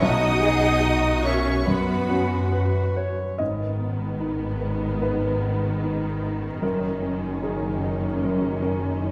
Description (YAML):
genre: cinematic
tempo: 74 BPM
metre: 4/4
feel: rubato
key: G# minor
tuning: A4 = 441 Hz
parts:
  - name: clear studio violin section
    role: melody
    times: 0.0-9.1 s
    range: D#4 to D#6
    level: -37 LUFS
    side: equal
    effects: none
  - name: rich studio violin section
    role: second line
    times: 0.0-9.1 s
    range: B3 to D#5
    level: -33 LUFS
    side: equal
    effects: none
  - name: silver concert flute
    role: second line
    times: 0.0-2.5 s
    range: E5 to F#5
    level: -33 LUFS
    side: equal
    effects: none
  - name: clear studio viola section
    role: accompaniment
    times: 0.0-9.1 s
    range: D#3 to D#4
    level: -35 LUFS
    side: equal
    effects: none
  - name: felt-muted upright piano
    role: accompaniment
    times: 0.0-9.1 s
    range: B1 to D#5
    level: -30 LUFS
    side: equal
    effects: none
  - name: mellow French horn section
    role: sustained chords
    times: 0.0-9.1 s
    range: D#3 to D#4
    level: -33 LUFS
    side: equal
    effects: none
  - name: clear studio cello section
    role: bass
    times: 0.0-9.1 s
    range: F#2 to G#4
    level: -32 LUFS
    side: equal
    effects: none
  - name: rich studio double bass section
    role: bass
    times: 0.0-9.1 s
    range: F#1 to F#2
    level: -30 LUFS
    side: equal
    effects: none
  - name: mellow clarinet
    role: second line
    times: 2.5-3.4 s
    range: B4 to C#5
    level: -33 LUFS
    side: equal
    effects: none
room: wet scoring stage reverb, RT60 1.6 s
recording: heard from further back in the room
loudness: -24 LUFS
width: mono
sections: 0.0-3.4 A section; 3.4-9.1 A section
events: none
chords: 0.0 Bmaj7; 1.7 F#sus4; 3.4 G#m; 6.6 D#m7/F#